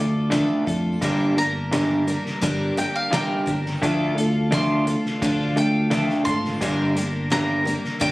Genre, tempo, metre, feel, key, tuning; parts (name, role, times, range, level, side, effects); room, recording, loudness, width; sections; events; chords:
folk rock and heartland rock; 86 BPM; 4/4; straight; G minor; A4 = 440 Hz
mandolin; second line; 0.0-8.1 s; Bb4 to C6; -28 LUFS; equal
picked twelve-string acoustic guitar; accompaniment; 0.0-8.1 s; G2 to Bb4; -27 LUFS; left 1 dB
electric guitar through a small old amp; riff; 0.0-8.1 s; G2 to D4; -23 LUFS; equal
fingered electric bass; bass; 0.0-8.1 s; G1 to F2; -26 LUFS; equal
loose indie drum kit; drums; 0.3-8.1 s; hi-hat, kick drum, snare drum; -30 LUFS; equal
rich chamber string section; sustained chords; 1.0-8.1 s; G3 to F5; -36 LUFS; left 1 dB
light reverb; recorded on a phone in the room, studio reverb; -20 LUFS; side -19 dB against mid
0.0-8.1 A section
mandolin solo 0.0-8.1
0.0 Dm; 1.0 Gm; 3.8 Dm; 6.6 Gm